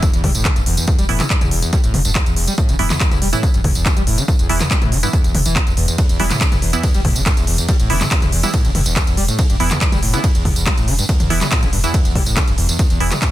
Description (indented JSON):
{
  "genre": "driving peak-time techno",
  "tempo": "141 BPM",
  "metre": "4/4",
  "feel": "straight",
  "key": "E minor",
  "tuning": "A4 = 440 Hz",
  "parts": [
    { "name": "screaming distorted acid line", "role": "riff", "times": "0.0-13.3 s", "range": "D2 to G3", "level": "-22 LUFS", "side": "equal", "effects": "distortion, lush chorus, sidechain pumping, ping-pong delay" },
    { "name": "electronic kick drum", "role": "drums", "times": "0.0-13.3 s", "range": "none", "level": "-16 LUFS", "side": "equal", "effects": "studio reverb" },
    { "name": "techno drum kit", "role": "drums", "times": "0.0-13.3 s", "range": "handclaps, hi-hat, ride cymbal, tambourine, toms", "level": "-20 LUFS", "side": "equal", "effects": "sidechain pumping on hats, studio reverb, sidechain pumping on cymbals, sidechain pumping on perc, sidechain pumping on toms" },
    { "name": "impact", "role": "sound effects", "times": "0.0-0.9 s", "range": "none", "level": "-33 LUFS", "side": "equal", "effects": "none" },
    { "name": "warm sub bass", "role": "bass", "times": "0.1-13.1 s", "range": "E1", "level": "-21 LUFS", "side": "equal", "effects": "tube saturation, sidechain pumping, low-pass filter" },
    { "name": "wavetable chord stab", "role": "stabs", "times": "1.1-13.2 s", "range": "E3 to E4", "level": "-24 LUFS", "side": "right 3 dB", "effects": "sidechain pumping, ping-pong delay" }
  ],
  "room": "digital ambience",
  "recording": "dense, heavily limited modern master",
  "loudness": "-14 LUFS",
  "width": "side -14 dB against mid",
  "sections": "0.0-13.3 A section",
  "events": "impact 0.0-0.9",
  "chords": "0.0 E5"
}